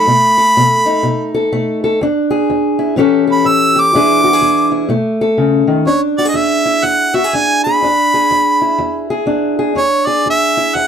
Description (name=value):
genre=acoustic country blues, solo or duo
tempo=124 BPM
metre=4/4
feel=swing 62% on 8ths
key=E mixolydian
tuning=A4 = 441 Hz
part: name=clear harmonica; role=melody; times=0.0-10.9 s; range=C#5 to E6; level=-12 LUFS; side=right 1 dB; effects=none
part: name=fingerpicked steel-string acoustic guitar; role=accompaniment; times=0.0-10.9 s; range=E2 to A4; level=-14 LUFS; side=left 1 dB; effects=none
room=small room ambience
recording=dry, close 1970s-style studio recording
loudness=-11 LUFS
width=side -8 dB against mid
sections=0.0-5.9 A section; 5.9-10.9 B section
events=harmonica solo 0.0-5.9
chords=0.0 B7; 2.0 E7; 3.0 A7; 3.9 E7; 4.9 B7; 5.9 E7